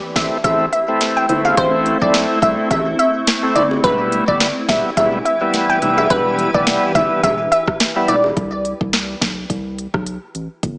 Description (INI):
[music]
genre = dancehall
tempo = 106 BPM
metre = 4/4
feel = swing 56% on 16ths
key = A minor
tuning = A4 = 438 Hz
[part]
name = granular cloud pad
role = sustained chords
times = 0.0-8.3 s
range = E3 to B4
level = -24 LUFS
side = equal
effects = built-in reverb, sidechain pumping
[part]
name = glassy wavetable pluck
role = melody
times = 0.2-8.2 s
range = B4 to G5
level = -17 LUFS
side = equal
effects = chorus, digital delay
[part]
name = overdriven tonewheel organ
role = accompaniment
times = 0.2-8.2 s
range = G3 to E4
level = -19 LUFS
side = equal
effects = slow rotary speaker
[part]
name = round analog bass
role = bass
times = 0.2-10.8 s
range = E1 to C2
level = -26 LUFS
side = equal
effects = none
[part]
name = afro-pop drum kit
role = drums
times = 0.2-10.8 s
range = hi-hat, kick drum, rim click, snare drum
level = -20 LUFS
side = equal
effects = vintage 12-bit sampler grit
[part]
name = bongos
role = percussion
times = 0.2-8.4 s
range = none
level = -25 LUFS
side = equal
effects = none
[sound]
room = moderate lush hall reverb, RT60 1.7 s, digital ambience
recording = small speaker sound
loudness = -14 LUFS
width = side -24 dB against mid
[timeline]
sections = 0.0-8.4 A section; 8.4-10.8 B section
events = none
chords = 0.0 Am; 3.8 Em; 8.4 Amadd9 (rootless)